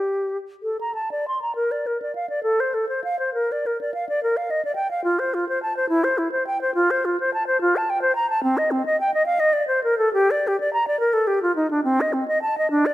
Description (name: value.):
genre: classical, baroque-style fantasia for unaccompanied flute.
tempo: 62-74 BPM (dotted quarters).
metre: 6/8.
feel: rubato.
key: Bb major, G minor from 8.4 s.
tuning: A4 = 440 Hz.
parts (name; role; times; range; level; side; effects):
silver concert flute; solo; 0.0-12.9 s; C4 to C6; -20 LUFS; equal; none.
room: moderate recital hall reverb, RT60 1.6 s.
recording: close, detailed microphones.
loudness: -20 LUFS.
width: side -15 dB against mid.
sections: 0.0-1.6 A section; 1.6-12.9 A section.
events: none.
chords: none.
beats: 0.62 | 1.55 2.43 | 3.34 4.22 | 5.05 5.89 | 6.76 7.61 | 8.43 9.27 | 10.16 11.02 | 11.86 12.73.